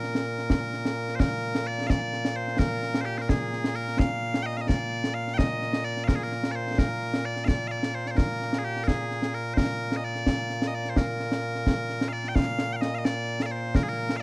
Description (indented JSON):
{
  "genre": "scottish traditional, Scottish pipe music",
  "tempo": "86 BPM (dotted quarters)",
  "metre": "6/8",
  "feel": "straight",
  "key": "Bb mixolydian",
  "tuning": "A4 = 440 Hz",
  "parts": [
    { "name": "loud bright bagpipes", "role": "melody", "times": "0.0-14.2 s", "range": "Bb2 to G5", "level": "-31 LUFS", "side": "equal", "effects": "slapback echo" },
    { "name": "concert snare drum and concert bass drum", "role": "drums", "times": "0.0-14.2 s", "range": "none", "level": "-29 LUFS", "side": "equal", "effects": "none" }
  ],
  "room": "little or no reverb",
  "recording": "dark, warm production",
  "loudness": "-28 LUFS",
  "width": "mono",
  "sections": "0.0-1.2 A section; 1.2-12.4 A section; 12.4-14.2 B section",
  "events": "none",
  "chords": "none",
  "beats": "0.50 | 1.20 1.89 | 2.59 3.29 | 3.99 4.68 | 5.38 6.08 | 6.78 7.47 | 8.17 8.87 | 9.57 10.27 | 10.96 11.66 | 12.36 13.06 | 13.75"
}